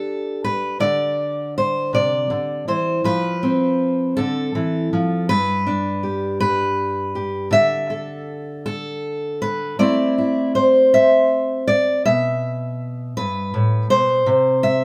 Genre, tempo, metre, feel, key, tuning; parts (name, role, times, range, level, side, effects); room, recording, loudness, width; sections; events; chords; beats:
folk, solo fingerstyle acoustic guitar; 54 BPM (dotted quarters); 6/8; straight; G major; A4 = 440 Hz
fingerpicked steel-string acoustic guitar; solo; 0.0-14.8 s; G2 to E5; -20 LUFS; equal
moderate studio reverb, RT60 0.5 s; band playing live in one room; -20 LUFS; mono
0.8-14.8 A section
0.0 G5; 0.8 Cadd9; 3.1 F; 5.3 G; 7.5 D5; 9.8 Am; 12.1 Em/B; 14.3 N.C.
| 0.80 1.94 | 3.06 4.18 | 5.29 6.40 | 7.52 8.65 | 9.80 10.94 | 12.06 13.18 | 14.28